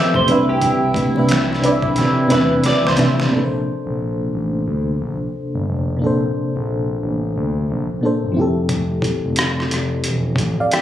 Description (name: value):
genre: R&B, neo-soul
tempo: 89 BPM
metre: 4/4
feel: swing 61% on 16ths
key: Bb lydian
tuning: A4 = 439 Hz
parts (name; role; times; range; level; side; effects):
- semi-hollow electric guitar; second line; 0.0-3.3 s; G4 to E5; -20 LUFS; right 2 dB; analog chorus, slapback echo
- FM electric piano with tremolo; accompaniment; 0.0-10.8 s; Bb2 to G5; -19 LUFS; left 1 dB; none
- clear woodwind section; sustained chords; 0.0-3.3 s; D3 to G4; -24 LUFS; right 1 dB; none
- boom bap sampler-style drum kit; drums; 0.1-3.3, 8.7-10.8 s; finger snaps, hi-hat, kick drum, rim click, snare drum; -21 LUFS; equal; overdrive
- congas; percussion; 0.1-3.3 s; none; -27 LUFS; right 3 dB; none
- smooth gliding synth bass; bass; 0.2-10.6 s; E1 to C3; -22 LUFS; right 1 dB; none
room: light reverb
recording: recorded on a phone in the room, club reverb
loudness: -16 LUFS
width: side -11 dB against mid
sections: 0.0-3.3 A section; 3.3-10.8 B section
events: drum fill 2.0-3.3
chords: 0.3 Cmaj9; 3.3 Bbmaj9; 8.4 Fmaj9